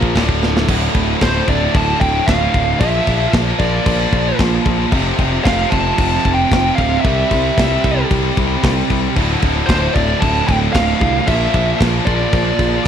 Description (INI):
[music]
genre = heavy metal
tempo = 113 BPM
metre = 4/4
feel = straight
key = D minor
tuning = A4 = 440 Hz
[part]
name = high-gain distorted guitar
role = riff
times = 0.0-12.9 s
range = D2 to C4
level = -20 LUFS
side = right 12 dB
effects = distortion
[part]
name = tight distorted guitar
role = riff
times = 0.0-12.9 s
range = D2 to Bb3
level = -21 LUFS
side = left 15 dB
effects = distortion
[part]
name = picked electric bass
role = bass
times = 0.0-12.9 s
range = D1 to C2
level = -19 LUFS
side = equal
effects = none
[part]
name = tight metal drum kit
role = drums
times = 0.0-12.9 s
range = crash cymbal, kick drum, snare drum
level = -19 LUFS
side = equal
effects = vintage 12-bit sampler grit
[part]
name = high-gain lead guitar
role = melody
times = 1.2-12.8 s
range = C5 to A5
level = -19 LUFS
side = equal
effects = distortion
[sound]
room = light reverb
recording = none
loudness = -13 LUFS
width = side -8 dB against mid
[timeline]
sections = 0.7-12.9 A section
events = drum fill 0.4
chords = 0.0 Dm; 2.8 Bb; 4.9 F; 7.0 C; 9.2 Dm; 11.3 Bb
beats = 0.16 | 0.69 1.22 1.75 2.28 | 2.81 3.34 3.87 4.40 | 4.93 5.46 5.99 6.52 | 7.05 7.58 8.11 8.63 | 9.16 9.69 10.22 10.75 | 11.28 11.80 12.33 12.86